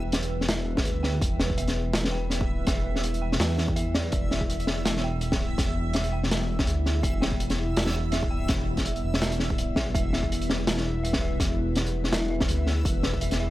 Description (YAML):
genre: half-time drum and bass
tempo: 165 BPM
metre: 4/4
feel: swing 56% on 16ths, half-time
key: E minor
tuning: A4 = 440 Hz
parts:
  - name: dark analog pad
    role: sustained chords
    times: 0.0-13.5 s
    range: G3 to E5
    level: -33 LUFS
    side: left 1 dB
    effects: chorus, phaser, vintage 12-bit sampler grit, sidechain pumping
  - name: dark detuned synth bell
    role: arpeggios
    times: 0.0-13.5 s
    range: D5 to G5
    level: -39 LUFS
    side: right 2 dB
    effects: chorus, tape echo
  - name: dark detuned saw bass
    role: bass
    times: 0.0-13.5 s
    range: E1 to E2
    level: -28 LUFS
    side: equal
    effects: none
  - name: backwards swelling texture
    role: texture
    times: 0.0-13.5 s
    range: E5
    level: -40 LUFS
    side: right 2 dB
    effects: built-in reverb
  - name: crunchy breakbeat drum kit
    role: drums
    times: 0.1-13.4 s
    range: hi-hat, snare drum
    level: -28 LUFS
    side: equal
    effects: none
  - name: electronic kick drum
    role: drums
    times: 0.8-13.2 s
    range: none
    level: -29 LUFS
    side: equal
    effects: none
room: little or no reverb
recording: dry, gritty hardware recording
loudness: -24 LUFS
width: side -16 dB against mid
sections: 0.0-13.5 A section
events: none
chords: 0.0 Em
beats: 0.12 0.49 0.85 | 1.22 1.58 1.94 2.31 | 2.67 3.03 3.40 3.76 | 4.12 4.49 4.85 5.22 | 5.58 5.94 6.31 6.67 | 7.03 7.40 7.76 8.12 | 8.49 8.85 9.22 9.58 | 9.94 10.31 10.67 11.03 | 11.40 11.76 12.12 12.49 | 12.85 13.22